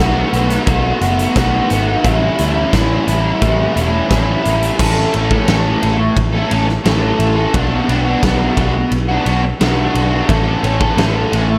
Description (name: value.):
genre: rock, shoegaze and dream pop.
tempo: 87 BPM.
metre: 4/4.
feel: straight.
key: A mixolydian.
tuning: A4 = 441 Hz.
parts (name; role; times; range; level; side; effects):
overdriven electric guitar; riff; 0.0-11.6 s; A2 to A4; -18 LUFS; equal; analog chorus.
vintage muted picked electric bass; bass; 0.0-11.6 s; E1 to D2; -20 LUFS; equal; none.
huge arena drum kit; drums; 0.3-11.5 s; crash cymbal, hi-hat, kick drum, ride cymbal, snare drum; -21 LUFS; equal; none.
room: moderate plate reverb, RT60 1.8 s, small room ambience.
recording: dreamy mix soaked in reverb.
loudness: -15 LUFS.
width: mono.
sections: 0.0-4.8 A section; 4.8-11.6 B section.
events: none.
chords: 0.0 B7; 2.0 A7(no3); 4.8 A; 7.5 Bm; 10.3 A.